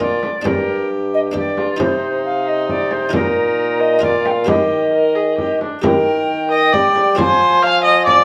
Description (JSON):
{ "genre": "classical, renaissance-style consort dance", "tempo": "134 BPM", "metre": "3/4", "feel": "straight", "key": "Eb major", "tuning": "A4 = 443 Hz", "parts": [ { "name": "mellow alto recorder", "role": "melody", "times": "0.0-8.2 s", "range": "Bb4 to Bb5", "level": "-22 LUFS", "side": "equal", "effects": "none" }, { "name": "rich viola", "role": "second line", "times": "0.0-8.2 s", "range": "D4 to F5", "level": "-20 LUFS", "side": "equal", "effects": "none" }, { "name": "buff-stop harpsichord", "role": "accompaniment", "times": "0.0-8.2 s", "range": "G2 to Bb4", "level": "-28 LUFS", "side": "equal", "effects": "none" }, { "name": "mellow bassoon", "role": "bass", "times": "0.0-8.2 s", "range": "G2 to G3", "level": "-21 LUFS", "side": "equal", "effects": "none" }, { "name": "frame drum", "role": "percussion", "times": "0.0-8.2 s", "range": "none", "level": "-25 LUFS", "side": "equal", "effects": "none" } ], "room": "wet stone room reverb, RT60 1.2 s", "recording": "none", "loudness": "-16 LUFS", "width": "mono", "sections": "0.0-5.8 A section; 5.8-8.2 A section", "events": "none", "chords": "0.0 Bb; 0.5 Gm; 1.8 Cm; 3.1 Bbsus4; 4.0 Bb; 4.5 Eb; 7.2 Fm" }